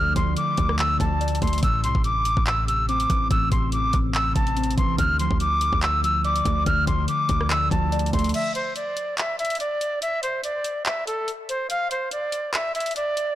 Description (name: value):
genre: hip hop, trap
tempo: 143 BPM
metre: 4/4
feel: half-time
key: unclear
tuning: A4 = 443 Hz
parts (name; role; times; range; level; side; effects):
- breathy bright jazz flute; melody; 0.0-13.3 s; A4 to F6; -24 LUFS; equal; low-pass filter, digital delay
- muted felt-like synth keys; accompaniment; 0.0-8.4 s; A2 to D5; -27 LUFS; left 1 dB; chorus, low-pass filter
- warm 808-style bass; bass; 0.0-8.3 s; A1 to D2; -26 LUFS; equal; none
- trap drum kit; drums; 0.2-13.3 s; crash cymbal, handclaps, hi-hat, kick drum, rim click; -27 LUFS; equal; none
room: light reverb, digital ambience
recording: blown-out, overdriven recording, overdrive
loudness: -21 LUFS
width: side -13 dB against mid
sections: 0.0-8.3 A section; 8.3-13.3 B section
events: break 8.3-13.3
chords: 0.0 Dm; 1.6 Am; 5.0 Dm; 8.3 N.C.